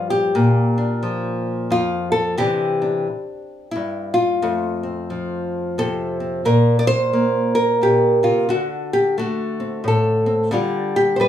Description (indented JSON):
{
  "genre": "folk, solo fingerstyle acoustic guitar",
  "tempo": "88 BPM",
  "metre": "3/4",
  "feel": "swing 61% on 8ths",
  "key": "unclear",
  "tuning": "A4 = 442 Hz",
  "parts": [
    { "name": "nylon-string guitar", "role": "solo", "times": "0.0-11.3 s", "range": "F2 to D5", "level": "-17 LUFS", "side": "left 1 dB", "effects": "none" }
  ],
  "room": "moderate studio reverb, RT60 0.5 s",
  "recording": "studio reverb",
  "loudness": "-17 LUFS",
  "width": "side -10 dB against mid",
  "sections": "0.0-6.5 A section; 6.5-11.3 B section",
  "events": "none",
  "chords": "0.4 Bb; 2.4 Cadd9; 4.4 F; 6.5 Bbsus2; 8.5 D7; 10.5 G7(no3)/D"
}